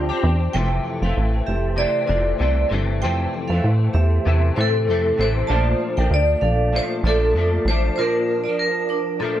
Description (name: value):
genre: indie pop, bedroom pop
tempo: 97 BPM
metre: 4/4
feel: swing 55% on 16ths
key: F major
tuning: A4 = 441 Hz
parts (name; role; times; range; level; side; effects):
- vibraphone with hard mallets; melody; 0.0-9.4 s; F4 to D5; -22 LUFS; equal; lush chorus, plate reverb
- direct-recorded clean electric guitar; accompaniment; 0.0-9.4 s; F2 to G4; -25 LUFS; left 4 dB; ensemble chorus, warbly pitch drift
- warm analog pad; sustained chords; 0.0-0.5 s; G4 to C6; -40 LUFS; right 1 dB; none
- plucky analog bass; bass; 0.0-7.9 s; F1 to A2; -19 LUFS; equal; none
- vibraphone with hard mallets; second line; 0.5-9.3 s; D4 to A5; -28 LUFS; right 6 dB; wide subtle chorus, plate reverb, tape echo
room: light reverb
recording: nothing above 10.5 kHz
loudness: -18 LUFS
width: side -12 dB against mid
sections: 0.6-9.4 A section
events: break 8.0-9.4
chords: 0.0 Dm11; 0.6 Fmaj7; 5.5 Bbmaj7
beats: | 0.56 1.17 1.79 2.41 | 3.03 3.65 4.26 4.88 | 5.50 6.12 6.74 7.36 | 7.97 8.59 9.21